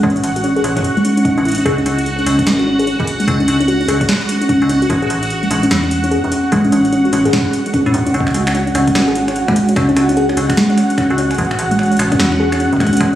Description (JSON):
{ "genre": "IDM", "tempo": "148 BPM", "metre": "4/4", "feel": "swing 62% on 16ths", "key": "C# minor", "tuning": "A4 = 440 Hz", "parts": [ { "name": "harp-like synth pluck", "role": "arpeggios", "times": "0.0-13.2 s", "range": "G#3 to G#4", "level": "-14 LUFS", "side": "equal", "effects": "chorus, tape echo" }, { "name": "metallic FM bass", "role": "bass", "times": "0.0-13.2 s", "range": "E1 to A2", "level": "-20 LUFS", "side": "equal", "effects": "none" }, { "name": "booming analog drum machine", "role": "drums", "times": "0.0-13.2 s", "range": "finger snaps, hi-hat, snare drum", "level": "-22 LUFS", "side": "right 1 dB", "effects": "overdrive, digital delay" }, { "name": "electronic kick drum", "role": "drums", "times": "0.0-13.1 s", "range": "none", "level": "-22 LUFS", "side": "equal", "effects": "none" }, { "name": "bubbling stepped-filter texture", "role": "texture", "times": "0.0-13.2 s", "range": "F#4 to F#5", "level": "-21 LUFS", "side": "right 1 dB", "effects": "chorus, built-in reverb" } ], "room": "moderate echo chamber reverb, RT60 1.4 s", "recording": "recorded on a phone in the room, studio reverb, compression", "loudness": "-12 LUFS", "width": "side -12 dB against mid", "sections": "0.0-13.2 A section", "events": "none", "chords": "0.0 A6; 1.7 C#5; 4.9 A6; 8.1 C#5; 11.4 A6", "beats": "| 0.03 0.44 0.84 1.25 | 1.66 2.06 2.47 2.87 | 3.28 3.68 4.09 4.49 | 4.90 5.30 5.71 6.11 | 6.52 6.92 7.33 7.74 | 8.14 8.55 8.95 9.36 | 9.76 10.17 10.57 10.98 | 11.38 11.79 12.20 12.60 | 13.01" }